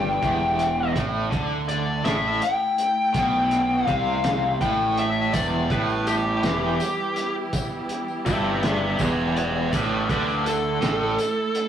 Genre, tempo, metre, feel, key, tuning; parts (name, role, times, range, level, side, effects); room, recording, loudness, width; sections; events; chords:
psychedelic rock; 55 BPM (dotted quarters); 6/8; straight; A4 = 440 Hz
fuzz lead guitar; melody; 0.0-11.7 s; G4 to G5; -24 LUFS; left 2 dB; distortion
muted studio string section; sustained chords; 0.0-11.7 s; E3 to G4; -32 LUFS; right 3 dB
cranked stack guitar; riff; 0.0-11.2 s; E2 to D3; -25 LUFS; right 1 dB; overdrive, tremolo
fuzz fingered electric bass; bass; 0.0-11.2 s; E1 to D2; -31 LUFS; right 1 dB; overdrive
cloth-damped thuddy drum kit; drums; 0.2-11.7 s; hi-hat, kick drum, snare drum; -29 LUFS; right 1 dB
tambourine; percussion; 5.3-11.4 s; -43 LUFS; left 6 dB
wet stone room reverb, RT60 1.2 s; rough rehearsal-room recording, warm saturation; -21 LUFS; side -9 dB against mid
0.0-11.7 A section
lead electric guitar solo 0.0-11.7
0.0 Em; 1.0 A5; 5.3 Em; 9.7 A5